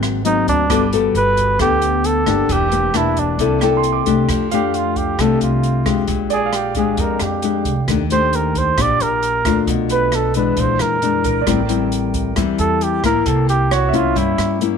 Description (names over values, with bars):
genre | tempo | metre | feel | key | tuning
bossa nova | 134 BPM | 4/4 | straight | F major from 4.3 s | A4 = 441 Hz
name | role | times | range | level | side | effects
nylon-string guitar | accompaniment | 0.0-14.8 s | F2 to A4 | -18 LUFS | left 9 dB | none
upright bass | bass | 0.0-14.8 s | E1 to G2 | -22 LUFS | right 3 dB | none
open jazz drum kit | drums | 0.0-14.7 s | hi-hat, kick drum, rim click | -25 LUFS | right 2 dB | none
warm flugelhorn | melody | 0.3-14.6 s | D4 to D5 | -19 LUFS | right 3 dB | none
clear grand piano | accompaniment | 0.7-14.8 s | Bb4 to D6 | -25 LUFS | right 17 dB | none
room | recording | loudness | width
light reverb, small room ambience | 1960s-style stereo with parts hard left and right | -14 LUFS | side -6 dB against mid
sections
0.0-4.3 A section; 4.3-14.8 B section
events
flugelhorn solo 4.3-14.8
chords
0.0 G#9; 0.7 Gmaj9; 2.5 Em7b5; 3.4 C13; 4.3 F69; 6.1 Bb13; 7.9 Ebmaj7#11; 9.7 Bm7b5; 10.6 Bb7#11; 11.5 Am7; 13.3 C7b9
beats
0.25 | 0.70 1.15 1.59 2.04 | 2.49 2.94 3.39 3.84 | 4.28 4.73 5.18 5.63 | 6.08 6.53 6.98 7.42 | 7.87 8.32 8.77 9.22 | 9.67 10.12 10.57 11.02 | 11.47 11.91 12.36 12.81 | 13.26 13.71 14.16 14.61